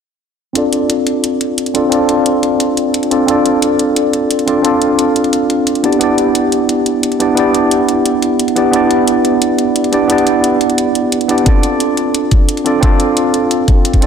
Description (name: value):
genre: liquid drum and bass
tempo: 176 BPM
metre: 4/4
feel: straight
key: D dorian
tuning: A4 = 440 Hz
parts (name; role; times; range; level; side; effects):
- tine electric piano; accompaniment; 0.5-14.1 s; B3 to D5; -12 LUFS; equal; medium stereo tremolo, low-pass filter, diffuse ambient delay
- electronic hi-hat; drums; 0.6-14.1 s; none; -20 LUFS; equal; none
- electronic kick drum; drums; 11.5-14.0 s; none; -11 LUFS; equal; none
room: wet lush hall reverb, RT60 2.0 s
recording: dreamy mix soaked in reverb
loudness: -11 LUFS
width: side -7 dB against mid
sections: 0.6-14.1 A section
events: filter sweep on tine electric piano 0.6-14.1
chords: 0.6 Dm7; 5.8 Em7; 11.5 Dm7